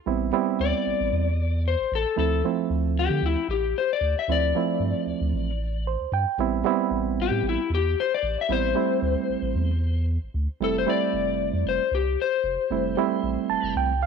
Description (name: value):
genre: straight-eighth soul blues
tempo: 114 BPM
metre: 4/4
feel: swing 54% on 16ths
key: A minor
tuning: A4 = 441 Hz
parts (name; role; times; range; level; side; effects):
- reed electric piano; accompaniment; 0.1-14.1 s; F3 to A5; -25 LUFS; right 12 dB; none
- round analog bass; bass; 0.1-14.1 s; F1 to D3; -26 LUFS; equal; none
- electric slide guitar; melody; 0.6-13.7 s; E4 to E5; -26 LUFS; left 10 dB; none
room: moderate echo chamber reverb, RT60 1.8 s, digital ambience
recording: 1960s-style stereo with parts hard left and right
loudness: -22 LUFS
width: side -6 dB against mid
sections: 0.0-14.1 A section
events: electric slide guitar solo 0.0-14.1; reed electric piano fill 5.6-6.4, 13.2-14.1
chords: 0.1 Am9; 2.2 Dm9; 6.4 Am9; 10.6 Fmaj7